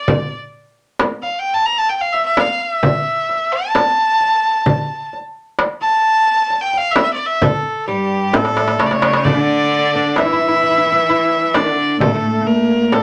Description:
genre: Arabic maqam ensemble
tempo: 131 BPM (eighths)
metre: 10/8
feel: straight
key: A maqam hijaz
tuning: A4 = 440 Hz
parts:
  - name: clear violin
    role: melody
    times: 0.0-13.0 s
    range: G4 to Bb5+21c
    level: -18 LUFS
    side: equal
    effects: none
  - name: darbuka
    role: percussion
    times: 0.1-13.0 s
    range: none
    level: -21 LUFS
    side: equal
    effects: none
  - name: frame drum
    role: percussion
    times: 0.1-13.0 s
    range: none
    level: -22 LUFS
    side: equal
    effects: none
  - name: oud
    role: second line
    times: 7.9-13.0 s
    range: G3 to E4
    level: -23 LUFS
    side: equal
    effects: none
  - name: rich cello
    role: second line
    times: 7.9-13.0 s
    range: G2 to E3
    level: -22 LUFS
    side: equal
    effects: none
room: wet small room ambience, RT60 0.5 s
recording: none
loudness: -16 LUFS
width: mono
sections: 0.0-9.3 A section; 9.3-13.0 B section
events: drum fill 8.3-9.3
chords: none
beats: | 0.07 0.53 0.99 1.45 1.91 2.37 2.83 3.29 3.75 4.21 | 4.67 5.12 5.58 6.04 6.50 6.96 7.42 7.88 8.34 8.80 | 9.25 9.71 10.17 10.63 11.09 11.55 12.01 12.47 12.93

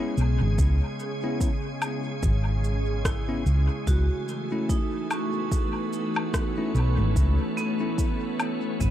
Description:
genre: ambient dub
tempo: 73 BPM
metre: 4/4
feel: swing 57% on 16ths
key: unclear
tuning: A4 = 439 Hz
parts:
  - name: soft additive organ-like pad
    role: sustained chords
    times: 0.0-8.9 s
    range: C#3 to G#4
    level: -30 LUFS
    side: equal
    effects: ensemble chorus, built-in reverb
  - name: vibraphone with hard mallets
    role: arpeggios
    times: 0.0-8.9 s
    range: B3 to C#6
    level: -34 LUFS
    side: right 3 dB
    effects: tape echo
  - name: bell-like tine electric piano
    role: stabs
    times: 0.0-8.0 s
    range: A3 to E4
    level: -35 LUFS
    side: left 3 dB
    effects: dub echo
  - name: hollow-body short-scale fingered electric bass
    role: bass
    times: 0.2-8.9 s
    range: G#1 to C#2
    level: -22 LUFS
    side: equal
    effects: none
  - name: electronic shaker, woodblock and rim click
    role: drums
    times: 0.2-8.9 s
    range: none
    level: -34 LUFS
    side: left 2 dB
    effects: overdrive, dub echo
  - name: electronic kick drum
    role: drums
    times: 0.6-8.9 s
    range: none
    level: -26 LUFS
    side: equal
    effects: overdrive
room: digital ambience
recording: none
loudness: -23 LUFS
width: side -12 dB against mid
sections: 0.0-8.9 A section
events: none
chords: 0.0 C#m7; 3.9 A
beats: | 0.59 1.41 2.23 3.05 | 3.87 4.70 5.52 6.34 | 7.16 7.98 8.81

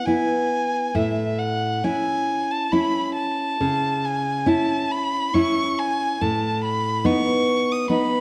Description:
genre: romantic duo for violin and classical guitar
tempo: 69 BPM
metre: 3/4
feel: rubato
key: unclear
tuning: A4 = 440 Hz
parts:
  - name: clear violin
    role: melody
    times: 0.0-8.2 s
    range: E5 to D#6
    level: -26 LUFS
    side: equal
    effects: none
  - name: nylon-string guitar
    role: accompaniment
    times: 0.0-8.2 s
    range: A2 to E4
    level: -24 LUFS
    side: equal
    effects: none
room: moderate recital hall reverb, RT60 1.5 s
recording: dark, warm production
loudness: -22 LUFS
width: mono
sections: 0.0-8.2 A section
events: none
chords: 0.0 E; 1.0 A; 3.6 C#m; 6.2 B7/A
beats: 0.07 | 0.96 1.85 2.72 | 3.60 4.47 5.35 | 6.21 7.06 7.91

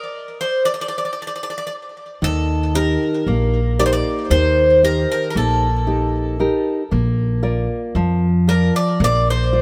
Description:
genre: greek folk, Greek bouzouki band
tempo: 115 BPM (eighths)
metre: 9/8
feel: straight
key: unclear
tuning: A4 = 441 Hz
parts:
  - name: Greek bouzouki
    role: melody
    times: 0.0-9.6 s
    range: A4 to D5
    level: -22 LUFS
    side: equal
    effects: tape echo
  - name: nylon-string guitar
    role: accompaniment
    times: 2.2-9.6 s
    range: Eb3 to D5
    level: -22 LUFS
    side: equal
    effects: none
  - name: upright bass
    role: bass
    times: 2.2-9.6 s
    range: Bb1 to F2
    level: -22 LUFS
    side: equal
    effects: none
room: light reverb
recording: none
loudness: -18 LUFS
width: mono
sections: 0.0-2.2 A section; 2.2-9.6 B section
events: stop 0.0-2.2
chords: 0.0 N.C.; 2.2 Eb; 6.9 Bb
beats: 0.14 0.66 1.19 1.71 | 2.23 2.75 3.27 3.79 4.31 4.84 5.36 5.88 6.40 | 6.92 7.45 7.97 8.49 9.01 9.53

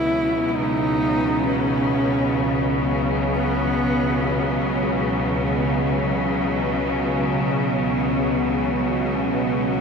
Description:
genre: dark ambient drone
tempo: free time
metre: none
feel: none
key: unclear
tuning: A4 = 440 Hz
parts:
  - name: warm horsehead fiddle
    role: melody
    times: 0.0-4.7 s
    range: B3 to E4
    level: -24 LUFS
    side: right 1 dB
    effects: diffuse ambient delay
  - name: rich studio cello section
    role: sustained chords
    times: 0.0-9.8 s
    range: C#3 to B3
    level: -23 LUFS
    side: left 1 dB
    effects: none
  - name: bowed-like drone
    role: drone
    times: 0.0-9.8 s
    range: C#2 to B2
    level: -24 LUFS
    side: right 1 dB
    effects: built-in reverb
room: wet huge ambient reverb, RT60 8.5 s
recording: dreamy mix soaked in reverb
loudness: -19 LUFS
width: side -5 dB against mid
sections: 0.0-9.8 A section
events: none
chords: 0.0 F#5/C#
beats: free time

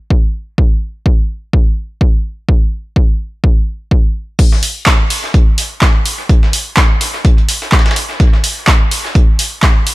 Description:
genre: house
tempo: 126 BPM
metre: 4/4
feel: swing 56% on 16ths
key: none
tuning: none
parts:
  - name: electronic kick drum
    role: drums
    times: 0.1-9.7 s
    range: none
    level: -10 LUFS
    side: equal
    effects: none
  - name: dusty soul sampler-style drum kit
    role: drums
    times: 4.4-9.9 s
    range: hi-hat, snare drum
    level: -22 LUFS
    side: equal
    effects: high-pass filter on snare, high-pass filter on hats, high-pass filter on room, dub echo
  - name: punchy analog drum machine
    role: drums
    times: 4.4-9.9 s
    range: crash cymbal, handclaps, hi-hat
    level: -16 LUFS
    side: equal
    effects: none
room: little or no reverb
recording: echo-heavy mix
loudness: -10 LUFS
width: side -20 dB against mid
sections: 0.0-4.4 A section; 4.4-9.9 B section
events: drop 4.4-9.9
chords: none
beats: 0.10 | 0.58 1.06 1.53 2.01 | 2.48 2.96 3.44 3.91 | 4.39 4.87 5.34 5.82 | 6.29 6.77 7.25 7.72 | 8.20 8.68 9.15 9.63

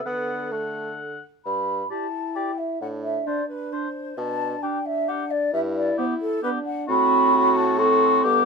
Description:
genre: quick classical-period movement for wind quintet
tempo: 132 BPM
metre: 3/4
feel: straight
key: G major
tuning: A4 = 440 Hz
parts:
  - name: mellow hollow wooden flute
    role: melody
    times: 0.0-8.5 s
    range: A4 to D6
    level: -24 LUFS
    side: left 1 dB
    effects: none
  - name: mellow oboe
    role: second line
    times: 0.0-8.5 s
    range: F#4 to F#5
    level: -26 LUFS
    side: left 5 dB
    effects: none
  - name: warm French horn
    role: accompaniment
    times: 0.0-8.4 s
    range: D3 to A4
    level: -28 LUFS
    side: equal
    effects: none
  - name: warm clarinet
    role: accompaniment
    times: 0.0-8.5 s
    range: B3 to A4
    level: -29 LUFS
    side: right 7 dB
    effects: none
  - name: clear bassoon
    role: bass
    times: 0.1-8.5 s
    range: G2 to B3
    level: -29 LUFS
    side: right 2 dB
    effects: none
room: light reverb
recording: minimal, uncompressed stereo recording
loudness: -21 LUFS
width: side -4 dB against mid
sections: 0.0-1.5 A section; 1.5-8.5 B section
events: none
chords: 0.1 D; 1.5 G; 2.8 D5/A; 4.2 G/B; 5.5 G; 6.9 F#dim/A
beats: | 0.06 0.53 0.99 | 1.45 1.91 2.36 | 2.81 3.27 3.73 | 4.18 4.63 5.09 | 5.54 5.99 6.43 | 6.89 7.35 7.79 | 8.25

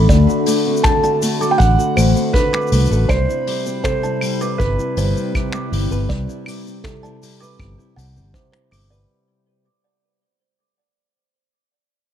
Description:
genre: folktronica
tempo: 80 BPM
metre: 4/4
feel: straight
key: unclear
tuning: A4 = 440 Hz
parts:
  - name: felt-muted upright piano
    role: melody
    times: 0.0-8.3 s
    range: B4 to B5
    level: -21 LUFS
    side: right 2 dB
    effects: ping-pong delay
  - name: warbly tape-like pad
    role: sustained chords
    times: 0.0-9.1 s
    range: G3 to B5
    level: -24 LUFS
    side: left 4 dB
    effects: chorus, built-in reverb, phaser
  - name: nylon-string guitar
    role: arpeggios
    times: 0.0-9.7 s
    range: C3 to B4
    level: -23 LUFS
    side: left 1 dB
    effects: ping-pong delay
  - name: fingered electric bass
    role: bass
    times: 0.0-9.0 s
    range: G1 to D2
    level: -16 LUFS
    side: equal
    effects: none
  - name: kalimba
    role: second line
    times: 0.1-9.1 s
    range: A4 to D6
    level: -27 LUFS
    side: right 4 dB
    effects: digital delay
  - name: kick drum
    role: drums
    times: 0.1-8.5 s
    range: none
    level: -19 LUFS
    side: equal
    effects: none
  - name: vintage brush drum kit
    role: drums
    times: 0.1-9.1 s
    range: claves, finger snaps, hi-hat, shaker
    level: -27 LUFS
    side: left 3 dB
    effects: none
room: small room ambience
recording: dark, warm production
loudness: -15 LUFS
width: side -10 dB against mid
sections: 0.0-9.1 A section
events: fade-out 1.1-9.1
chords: 0.0 D7; 3.1 Cmaj7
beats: | 0.10 0.84 1.59 2.35 | 3.10 3.85 4.59 5.34 | 6.09 6.84 7.59 8.35

